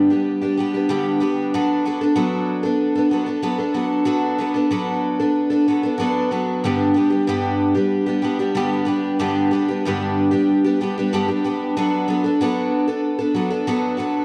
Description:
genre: rock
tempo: 94 BPM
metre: 4/4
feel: straight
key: G major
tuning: A4 = 440 Hz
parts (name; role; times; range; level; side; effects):
- picked twelve-string acoustic guitar; solo; 0.0-14.2 s; G2 to A4; -20 LUFS; equal; analog delay
room: wet lush hall reverb, RT60 1.8 s, small room ambience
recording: dreamy mix soaked in reverb, cassette tape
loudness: -20 LUFS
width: mono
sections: 0.0-14.2 A section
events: none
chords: 0.0 G; 1.5 D6/F#; 6.6 G; 11.8 D6/F#

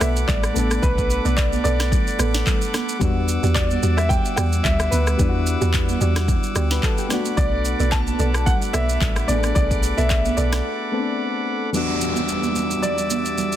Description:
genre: amapiano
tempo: 110 BPM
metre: 4/4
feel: swing 55% on 16ths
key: E minor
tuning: A4 = 439 Hz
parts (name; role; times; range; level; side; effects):
- dark grand piano; melody; 0.0-13.6 s; B4 to A5; -26 LUFS; equal; ping-pong delay
- soft electric-piano-like synth keys; accompaniment; 0.0-13.6 s; E2 to B4; -27 LUFS; left 4 dB; chorus
- pipe organ, principal; sustained chords; 0.0-13.6 s; G3 to E6; -28 LUFS; right 2 dB; sidechain pumping
- soft round pluck; stabs; 0.0-10.6 s; F#4 to D5; -32 LUFS; right 5 dB; chorus, ping-pong delay
- deep log drum bass; bass; 0.0-10.6 s; A1 to E2; -21 LUFS; equal; none
- afro-pop drum kit; drums; 0.0-13.6 s; handclaps, kick drum, rim click, shaker, snare drum; -23 LUFS; equal; none
- congas; percussion; 0.0-13.5 s; none; -29 LUFS; right 9 dB; none
- downlifter; sound effects; 11.7-13.6 s; none; -28 LUFS; right 1 dB; none
room: digital ambience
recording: dense, heavily limited modern master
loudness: -18 LUFS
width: side -12 dB against mid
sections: 0.0-11.7 A section; 11.7-13.6 B section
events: drop 0.0-11.7; break 10.6-11.7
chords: 0.0 Bm7; 3.0 Em9; 7.1 Bm7; 11.7 Em9

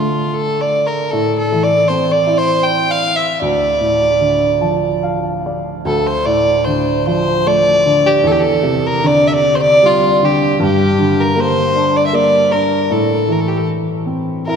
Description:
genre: celtic folk, Celtic slow air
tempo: 71-80 BPM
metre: 3/4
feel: rubato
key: D minor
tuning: A4 = 438 Hz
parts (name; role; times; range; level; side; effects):
- dark fiddle; melody; 0.0-14.6 s; F4 to G5; -14 LUFS; equal; none
- warm upright piano; accompaniment; 0.0-14.6 s; D2 to A5; -17 LUFS; equal; none
room: wet church reverb, RT60 3.8 s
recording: recorded in a church or concert hall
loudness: -12 LUFS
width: side -6 dB against mid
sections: 0.0-5.9 A section; 5.9-14.6 A section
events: upright piano fill 4.2-5.9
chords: 0.0 Dm; 1.1 Am; 3.4 Dm; 8.2 Cadd9/E; 10.6 Gm; 12.9 Am

